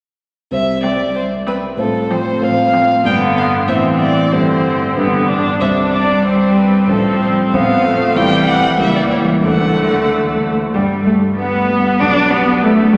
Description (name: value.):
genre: quick classical-period movement for piano quartet.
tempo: 94 BPM.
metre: 2/4.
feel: straight.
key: C major, G major from 8.2 s.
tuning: A4 = 439 Hz.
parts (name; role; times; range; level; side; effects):
dark violin; melody; 0.5-13.0 s; G3 to G5; -21 LUFS; equal; none.
dark grand piano; accompaniment; 0.5-13.0 s; A1 to D5; -20 LUFS; equal; none.
rich cello; second line; 0.8-13.0 s; D3 to D4; -19 LUFS; equal; none.
clear viola; accompaniment; 0.8-13.0 s; G3 to D4; -21 LUFS; equal; none.
room: wet cathedral reverb, RT60 4.3 s.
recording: nothing above 10.6 kHz.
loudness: -14 LUFS.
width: mono.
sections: 0.5-10.7 A section; 10.7-13.0 B section.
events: none.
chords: 0.5 C5; 1.8 F/A; 3.1 G; 3.7 Am; 4.3 Gsus4; 5.0 G; 5.6 C5; 6.9 F/A; 8.2 Am7/C; 8.8 C#dim7; 9.4 D; 10.7 G; 12.0 G/B.